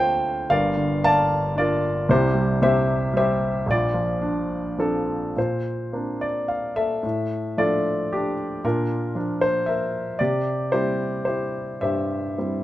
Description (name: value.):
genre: classical, lyrical solo piano.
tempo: 103-117 BPM.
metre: 3/4.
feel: rubato.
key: Bb lydian.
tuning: A4 = 440 Hz.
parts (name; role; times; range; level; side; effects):
warm grand piano; solo; 0.0-12.6 s; G1 to A5; -21 LUFS; equal; none.
room: light reverb.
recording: none.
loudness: -21 LUFS.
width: side -14 dB against mid.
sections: 0.0-5.4 A section; 5.4-12.6 B section.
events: none.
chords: 0.0 Dm7; 0.5 Gm7; 2.1 C; 3.7 Bbadd9; 7.0 Dm/A; 8.6 Bb; 10.2 C.